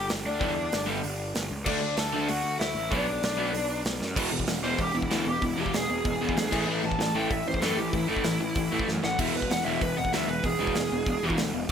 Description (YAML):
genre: punk rock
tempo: 191 BPM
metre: 4/4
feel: straight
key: unclear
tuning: A4 = 440 Hz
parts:
  - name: bluesy overdriven lead guitar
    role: melody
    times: 0.0-11.4 s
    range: D4 to A5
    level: -30 LUFS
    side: equal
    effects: distortion, digital delay
  - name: fuzz picked electric bass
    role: bass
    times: 0.0-11.7 s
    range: E1 to F#2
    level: -34 LUFS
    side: equal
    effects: overdrive
  - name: big rock drum kit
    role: drums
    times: 0.1-11.7 s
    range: crash cymbal, hi-hat, kick drum, snare drum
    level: -31 LUFS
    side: right 1 dB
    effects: none
  - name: crunchy overdriven guitar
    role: riff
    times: 0.4-11.7 s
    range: E2 to D4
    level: -29 LUFS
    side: equal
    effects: none
room: light reverb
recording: none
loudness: -25 LUFS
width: side -8 dB against mid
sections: 0.0-4.2 A section; 4.2-11.7 B section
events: drum fill 4.0, 8.9-9.2; lead electric guitar solo 4.2-11.7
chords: 0.0 G5; 1.7 D; 2.9 Bm; 4.2 E; 6.5 A5; 9.2 E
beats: 0.10 | 0.41 0.72 1.04 1.35 | 1.66 1.98 2.29 2.60 | 2.92 3.23 3.54 3.86 | 4.17 4.49 4.80 5.11 | 5.43 5.74 6.05 6.37 | 6.68 6.99 7.31 7.62 | 7.93 8.25 8.56 8.88 | 9.19 9.50 9.81 10.13 | 10.44 10.75 11.07 11.38 | 11.69